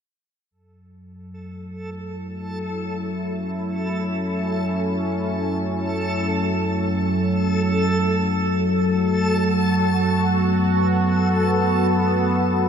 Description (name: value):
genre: dark ambient drone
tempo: free time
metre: none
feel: none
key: F# minor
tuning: A4 = 440 Hz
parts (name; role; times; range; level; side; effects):
- sweeping resonant pad; sustained chords; 2.1-12.7 s; F#3 to F#4; -26 LUFS; left 1 dB; chorus
- deep rumbling drone; drone; 1.1-12.7 s; F#2 to F#3; -22 LUFS; equal; built-in reverb
- backwards swelling texture; texture; 1.6-12.7 s; A4; -26 LUFS; equal; built-in reverb
room: wet huge ambient reverb, RT60 8.2 s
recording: dark, warm production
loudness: -19 LUFS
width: side -7 dB against mid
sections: 0.5-12.7 A section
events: fade-in on analog synth pad 0.5-12.7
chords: 0.5 F#5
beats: free time